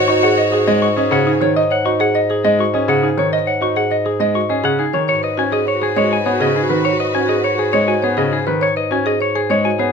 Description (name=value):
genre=classical, minimalist pattern music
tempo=102 BPM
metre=3/4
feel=straight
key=G# minor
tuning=A4 = 440 Hz
part: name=semi-hollow electric guitar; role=melody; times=0.0-9.9 s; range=G#4 to C#6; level=-20 LUFS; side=left 8 dB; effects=none
part: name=dark clarinet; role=second line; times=0.0-1.3, 5.1-8.4 s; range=F#4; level=-25 LUFS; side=right 2 dB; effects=none
part: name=rich symphonic string section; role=sustained chords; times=0.0-1.4, 5.1-8.4 s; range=F#4 to C#5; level=-24 LUFS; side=left 1 dB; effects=none
part: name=buzzing marimba with medium mallets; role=arpeggios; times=0.0-9.9 s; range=D#4 to D#5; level=-19 LUFS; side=right 5 dB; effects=none
part: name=warm bass clarinet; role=bass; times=0.0-9.9 s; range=G#2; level=-22 LUFS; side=left 1 dB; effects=none
part: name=clear concert grand piano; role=accompaniment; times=0.1-9.9 s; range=C#3 to D#4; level=-20 LUFS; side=left 1 dB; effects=none
room=moderate studio reverb, RT60 0.9 s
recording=none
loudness=-14 LUFS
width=side -6 dB against mid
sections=0.0-9.9 A section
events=none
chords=0.0 C#sus4/G#; 5.1 G#m7